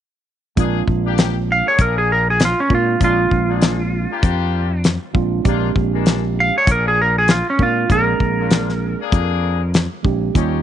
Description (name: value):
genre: straight-eighth soul blues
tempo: 98 BPM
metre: 4/4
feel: swing 56% on 16ths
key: Bb mixolydian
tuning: A4 = 440 Hz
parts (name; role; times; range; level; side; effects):
- mellow tine electric piano; accompaniment; 0.6-10.6 s; G3 to Ab4; -22 LUFS; right 15 dB; none
- clear horn section; sustained chords; 0.6-10.6 s; Ab3 to Ab4; -27 LUFS; left 15 dB; none
- fretless electric bass; bass; 0.6-10.6 s; Bb1 to Bb2; -20 LUFS; left 1 dB; none
- damped 70s drum kit; drums; 0.6-10.5 s; hi-hat, kick drum, snare drum; -16 LUFS; left 1 dB; none
- clean lap steel guitar; melody; 1.5-9.7 s; Db4 to F5; -18 LUFS; right 1 dB; none
room: small room ambience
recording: 1960s-style stereo with parts hard left and right, nothing above 10.4 kHz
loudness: -15 LUFS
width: side -10 dB against mid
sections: 0.6-10.6 A section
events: electric slide guitar solo 0.6-10.6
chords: 0.6 Bb7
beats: | 0.57 1.18 1.79 2.41 | 3.02 3.63 4.24 4.85 | 5.46 6.07 6.68 7.29 | 7.91 8.52 9.13 9.74 | 10.35